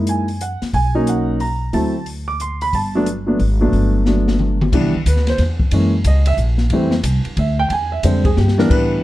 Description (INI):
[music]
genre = jazz piano trio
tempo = 181 BPM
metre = 3/4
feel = swing 64% on 8ths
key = G major, C major from 4.7 s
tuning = A4 = 439 Hz
[part]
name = warm grand piano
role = melody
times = 0.0-9.0 s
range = D3 to D6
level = -18 LUFS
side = right 1 dB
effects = none
[part]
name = upright bass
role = bass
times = 0.0-9.0 s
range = G1 to A2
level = -18 LUFS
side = equal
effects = none
[part]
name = open jazz drum kit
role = drums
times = 0.1-8.8 s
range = crash cymbal, hi-hat, kick drum, ride cymbal, snare drum, toms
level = -22 LUFS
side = left 1 dB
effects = none
[sound]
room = little or no reverb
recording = dark, warm production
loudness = -15 LUFS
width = side -15 dB against mid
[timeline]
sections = 0.0-4.7 A section; 4.7-9.0 B section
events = drum fill 4.1-4.7, 8.4-8.7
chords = 0.0 F#13; 0.7 Bmaj9; 1.7 D7(no3); 2.7 Gmaj9; 4.7 Cmaj7; 5.7 F#7; 6.7 Fmaj7sus2; 7.7 E7alt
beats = 0.07 0.41 | 0.74 1.07 1.40 | 1.73 2.07 2.40 | 2.73 3.06 3.40 | 3.73 4.06 4.39 | 4.72 5.05 5.39 | 5.72 6.05 6.38 | 6.71 7.05 7.38 | 7.71 8.04 8.38 | 8.71